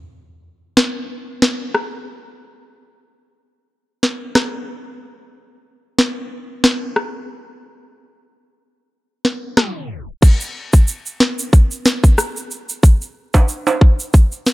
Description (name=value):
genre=dancehall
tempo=92 BPM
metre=4/4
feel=swing 56% on 16ths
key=none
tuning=none
part: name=island pop drum kit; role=drums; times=0.8-14.5 s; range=crash cymbal, kick drum, rim click, snare drum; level=-14 LUFS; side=equal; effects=overdrive
part: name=egg shaker and timbales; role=percussion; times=10.2-14.5 s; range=none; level=-22 LUFS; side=right 4 dB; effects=none
room=light reverb, digital ambience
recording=tape stop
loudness=-14 LUFS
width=side -19 dB against mid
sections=0.0-10.2 A section; 10.2-14.5 B section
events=tape stop 9.6-10.2; hi-hats muted 10.2-14.5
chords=none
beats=0.44 1.09 1.75 | 2.40 3.05 3.70 4.35 | 5.01 5.66 6.31 6.96 | 7.62 8.27 8.92 9.57 | 10.22 10.88 11.53 12.18 | 12.83 13.48 14.14